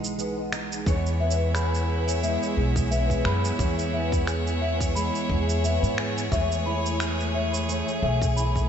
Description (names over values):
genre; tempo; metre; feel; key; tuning
folktronica; 88 BPM; 4/4; swing 56% on 16ths; unclear; A4 = 440 Hz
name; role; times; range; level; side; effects
fingerpicked plugged-in acoustic archtop guitar; arpeggios; 0.0-8.7 s; E3 to C#5; -29 LUFS; equal; ensemble chorus, low-pass filter, diffuse ambient delay
upright bass; bass; 0.0-8.7 s; B1 to G#2; -26 LUFS; equal; none
electronic shaker and finger snaps; drums; 0.0-8.7 s; none; -34 LUFS; right 2 dB; studio reverb
clear string quartet; sustained chords; 0.9-8.7 s; A3 to C#5; -31 LUFS; right 1 dB; none
electronic kick drum; drums; 0.9-8.7 s; none; -28 LUFS; equal; studio reverb
marimba with soft mallets; second line; 1.2-8.7 s; E5 to B5; -31 LUFS; left 4 dB; analog delay
room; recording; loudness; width
moderate plate reverb, RT60 2.8 s; dreamy mix soaked in reverb, nothing above 7.9 kHz; -23 LUFS; side -8 dB against mid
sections
0.0-8.7 A section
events
none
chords
0.0 Emaj7; 0.9 C#m7; 6.3 Amaj7